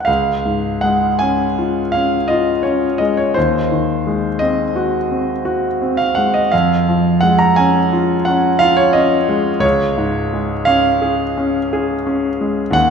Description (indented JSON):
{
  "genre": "classical, romantic nocturne for solo piano",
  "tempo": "57 BPM (dotted quarters)",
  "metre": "9/8",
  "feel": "uneven beats, rubato",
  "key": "Db major",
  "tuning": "A4 = 440 Hz",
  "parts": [
    { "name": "clear grand piano", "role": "solo", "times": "0.0-12.9 s", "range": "Db2 to Bb5", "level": "-14 LUFS", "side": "equal", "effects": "none" }
  ],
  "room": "wet concert hall reverb, RT60 2.3 s",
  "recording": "recorded in a church or concert hall",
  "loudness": "-14 LUFS",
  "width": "side -6 dB against mid",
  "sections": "0.1-12.9 A section",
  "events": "none",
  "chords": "0.1 Db; 3.4 Ab7/Eb; 6.5 Db/F; 9.6 Db"
}